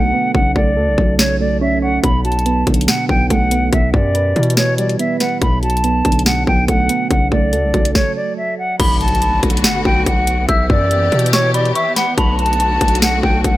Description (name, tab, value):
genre	hip hop, trap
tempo	142 BPM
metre	4/4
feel	half-time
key	B minor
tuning	A4 = 440 Hz
part	silver concert flute	melody	0.0-13.6 s	C#5 to B5	-18 LUFS	equal	low-pass filter
part	soft electric-piano-like synth keys	accompaniment	0.0-8.8 s	B2 to C#5	-19 LUFS	right 3 dB	chorus, low-pass filter
part	distorted 808-style bass	bass	0.0-13.6 s	B1 to B2	-18 LUFS	equal	distortion
part	trap drum kit	drums	0.3-13.5 s	crash cymbal, hi-hat, kick drum, snare drum	-17 LUFS	equal	none
part	dark detuned synth bell	second line	8.8-13.4 s	A5 to E6	-23 LUFS	left 3 dB	chorus, tape echo
part	warm symphonic string section	sustained chords	8.8-13.6 s	D3 to G4	-22 LUFS	left 1 dB	none
part	impact	sound effects	8.8-10.5 s	none	-26 LUFS	equal	none
room	light reverb, digital ambience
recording	none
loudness	-13 LUFS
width	side -16 dB against mid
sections	0.0-8.8 A section; 8.8-13.6 B section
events	break 0.0-2.0; stop 8.0-8.8; impact 8.8-10.5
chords	0.3 F#m/B; 2.0 Bm7; 3.7 Em/B; 5.4 Bm7; 7.1 F#m/B; 8.8 Bm7; 10.5 Em/B; 12.2 Bm7